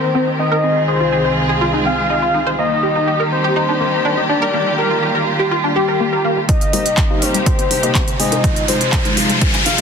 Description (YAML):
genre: progressive house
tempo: 123 BPM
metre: 4/4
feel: straight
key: C minor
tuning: A4 = 436 Hz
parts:
  - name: soft octave-layered synth lead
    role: melody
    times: 0.0-9.8 s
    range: G4 to F5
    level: -19 LUFS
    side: left 2 dB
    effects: chorus, cassette tape, ping-pong delay
  - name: dark chamber string section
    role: sustained chords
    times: 0.0-9.8 s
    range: C2 to Bb4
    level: -20 LUFS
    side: equal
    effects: sidechain pumping
  - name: wide unison pluck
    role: arpeggios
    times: 0.1-9.7 s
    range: Bb3 to C5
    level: -20 LUFS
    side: equal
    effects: analog chorus, sidechain pumping, ping-pong delay
  - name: electronic kick drum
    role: drums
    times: 6.5-9.5 s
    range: none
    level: -17 LUFS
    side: equal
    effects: overdrive
  - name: pop drum kit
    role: drums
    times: 6.5-9.8 s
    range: handclaps, hi-hat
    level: -20 LUFS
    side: right 1 dB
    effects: none
  - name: riser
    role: sound effects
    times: 7.7-9.8 s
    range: none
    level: -20 LUFS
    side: left 1 dB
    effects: none
  - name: chorused polysynth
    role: stabs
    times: 6.7-9.8 s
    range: Ab3 to Ab5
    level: -22 LUFS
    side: left 1 dB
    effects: sidechain pumping
  - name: plucky analog bass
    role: bass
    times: 6.7-9.8 s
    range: C2 to Eb2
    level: -32 LUFS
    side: right 1 dB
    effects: none
  - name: congas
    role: percussion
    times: 6.7-9.8 s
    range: none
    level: -25 LUFS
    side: left 8 dB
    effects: sidechain pumping on perc
room: light reverb, digital ambience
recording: dense, heavily limited modern master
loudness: -14 LUFS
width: side -6 dB against mid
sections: 0.0-6.5 A section; 6.5-9.8 B section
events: build-up 6.5-9.8; filter sweep on analog polysynth 6.5-9.8; filter sweep 6.5-9.8; riser 7.7-9.8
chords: 0.0 Cm7; 0.6 Ab6/C; 2.6 Ebmaj7; 4.5 Gm7; 6.5 Cm7; 8.4 Ab6/C